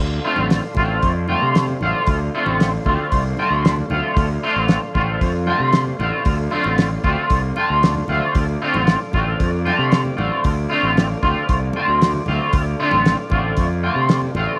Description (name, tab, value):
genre	psychedelic rock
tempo	115 BPM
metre	4/4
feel	straight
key	D minor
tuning	A4 = 440 Hz
part	tonewheel organ	sustained chords	0.0-14.6 s	A4 to D6	-33 LUFS	equal	slow rotary speaker, overdrive
part	fuzz fingered electric bass	bass	0.0-14.5 s	A1 to C3	-25 LUFS	equal	overdrive
part	twangy electric guitar	riff	0.2-14.6 s	D3 to F4	-22 LUFS	equal	flanger, double-tracked
part	congas	percussion	0.4-14.5 s	none	-34 LUFS	equal	none
part	cloth-damped thuddy drum kit	drums	0.5-14.2 s	hi-hat, kick drum, snare drum	-22 LUFS	equal	none
room	light reverb, small room ambience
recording	none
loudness	-19 LUFS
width	mono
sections	0.0-14.6 A section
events	none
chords	0.0 Dm7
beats	0.51 1.03 1.55 | 2.08 2.60 3.12 3.64 | 4.17 4.69 5.21 5.73 | 6.26 6.78 7.30 7.82 | 8.35 8.87 9.39 9.91 | 10.44 10.96 11.48 12.01 | 12.53 13.05 13.58 14.10